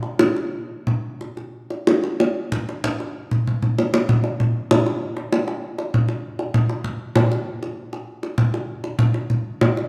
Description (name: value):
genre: gamelan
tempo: 97 BPM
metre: 4/4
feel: uneven beats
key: none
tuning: none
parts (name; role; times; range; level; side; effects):
- kendang; percussion; 0.0-9.9 s; none; -22 LUFS; equal; none
room: wet recital hall reverb, RT60 1.7 s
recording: none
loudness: -22 LUFS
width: mono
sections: 0.0-4.1 A section; 4.1-9.9 B section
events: drum fill 3.3-4.1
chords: none